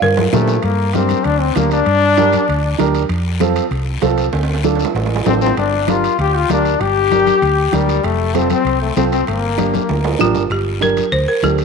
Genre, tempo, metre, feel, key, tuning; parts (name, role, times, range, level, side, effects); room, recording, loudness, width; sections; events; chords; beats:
latin, cumbia; 194 BPM; 4/4; straight; G minor; A4 = 440 Hz
folk marimba with hard mallets; melody; 0.0-0.5, 10.2-11.6 s; F4 to C5; -17 LUFS; right 3 dB
hollow-body short-scale fingered electric bass; bass; 0.0-11.6 s; F1 to Bb2; -19 LUFS; equal
congas; percussion; 0.0-11.6 s; -23 LUFS; left 13 dB
cowbell and timbales; percussion; 0.0-11.6 s; -26 LUFS; right 10 dB
guiro; percussion; 0.0-11.6 s; -31 LUFS; left 10 dB
bright trombone; second line; 0.3-2.9, 5.3-10.2 s; G3 to G4; -16 LUFS; left 6 dB
dark upright piano; accompaniment; 0.3-11.6 s; C4 to Bb4; -21 LUFS; right 11 dB
wet echo chamber reverb, RT60 1.8 s; 1960s-style stereo with parts hard left and right; -13 LUFS; side -5 dB against mid
0.6-10.5 A section; 10.5-11.6 B section
drum fill 0.0-0.6, 4.3-5.6, 9.7-10.5; trombone solo 0.6-10.5
0.0 Gm; 3.1 F; 4.3 Dm; 5.6 Gm; 8.0 F; 9.3 Gm
0.02 0.33 | 0.64 0.95 1.25 1.56 | 1.87 2.18 2.49 2.80 | 3.10 3.41 3.72 4.03 | 4.34 4.65 4.96 5.26 | 5.57 5.88 6.19 6.50 | 6.81 7.12 7.42 7.73 | 8.04 8.35 8.66 8.97 | 9.28 9.59 9.90 10.21 | 10.52 10.82 11.13 11.44